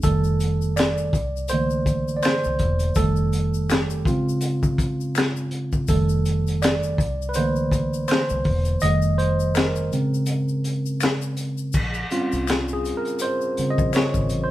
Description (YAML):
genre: R&B, neo-soul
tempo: 82 BPM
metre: 4/4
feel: swing 58% on 16ths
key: unclear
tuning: A4 = 440 Hz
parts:
  - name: barky tine electric piano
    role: accompaniment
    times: 0.0-14.5 s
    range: Db3 to Eb5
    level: -22 LUFS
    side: right 1 dB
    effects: overdrive
  - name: vintage muted fingered electric bass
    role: bass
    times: 0.0-14.5 s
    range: E1 to C2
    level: -26 LUFS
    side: equal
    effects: none
  - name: crunchy breakbeat drum kit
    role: drums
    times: 0.0-14.5 s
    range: crash cymbal, finger snaps, hi-hat, kick drum, snare drum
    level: -24 LUFS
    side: left 1 dB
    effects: none
  - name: tube shaker and finger snaps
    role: percussion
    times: 0.0-14.5 s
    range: none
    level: -36 LUFS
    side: left 8 dB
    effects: none
room: moderate stone room reverb, RT60 1.0 s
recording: band playing live in one room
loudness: -20 LUFS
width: side -15 dB against mid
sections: 0.0-11.7 A section; 11.7-14.5 B section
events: tine electric piano solo 0.0-11.7, 11.7-14.5; kick muted 8.8-11.7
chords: 0.0 F7; 1.1 C13; 3.0 F7; 4.1 Bbm9; 5.9 F7; 7.0 C13; 8.8 F7; 9.9 Bbm9; 11.7 Bbm69